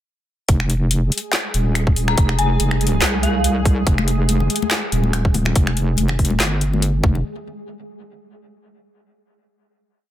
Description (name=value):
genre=deep dubstep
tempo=142 BPM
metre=4/4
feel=swing 55% on 16ths, half-time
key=F minor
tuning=A4 = 440 Hz
part: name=wobble bass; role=bass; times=0.5-7.2 s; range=Eb1 to C2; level=-18 LUFS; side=equal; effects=chorus
part: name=electronic kick drum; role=drums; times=0.5-7.1 s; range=none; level=-16 LUFS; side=equal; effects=small room ambience
part: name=garage drum kit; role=drums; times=0.5-6.9 s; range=finger snaps, handclaps, hi-hat, snare drum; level=-22 LUFS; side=left 1 dB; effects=small room ambience, soft clipping on snare
part: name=flickering grainy texture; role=texture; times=1.0-7.3 s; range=Ab3 to Ab4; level=-28 LUFS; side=right 2 dB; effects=built-in reverb
part: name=dark detuned synth bell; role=melody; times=2.1-3.7 s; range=F5 to Bb5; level=-26 LUFS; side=left 2 dB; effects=chorus, phaser, dub echo
part: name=congas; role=percussion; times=4.0-7.2 s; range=none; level=-26 LUFS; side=left 5 dB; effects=dub echo
room=little or no reverb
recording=dense, heavily limited modern master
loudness=-16 LUFS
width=side -12 dB against mid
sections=0.5-7.2 drop; 7.2-8.9 final hit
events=drop 0.5-7.2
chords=0.5 Fm; 7.2 N.C.